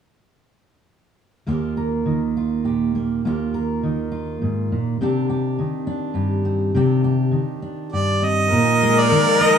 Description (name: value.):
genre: acoustic folk-pop ballad.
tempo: 102 BPM.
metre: 3/4.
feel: straight.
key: Eb major.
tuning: A4 = 440 Hz.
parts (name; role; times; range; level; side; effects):
fingerpicked steel-string acoustic guitar; accompaniment; 1.5-9.6 s; Eb2 to Bb4; -20 LUFS; right 1 dB; none.
bright harmonica; melody; 7.9-9.6 s; D5 to Eb5; -18 LUFS; right 3 dB; none.
warm viola; second line; 8.5-9.6 s; Bb4; -18 LUFS; left 4 dB; none.
clear chamber string section; sustained chords; 8.5-9.6 s; F3 to Bb4; -26 LUFS; left 1 dB; none.
room: wet studio reverb, RT60 0.8 s.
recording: band playing live in one room, studio ambience.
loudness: -18 LUFS.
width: side -7 dB against mid.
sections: 1.5-8.5 A section; 8.5-9.6 B section.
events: none.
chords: 1.5 Ebadd9; 5.0 Cmadd9; 8.5 Bb7sus4.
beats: | 1.46 2.05 2.64 | 3.23 3.82 4.40 | 4.99 5.58 6.16 | 6.75 7.33 7.92 | 8.51 9.09.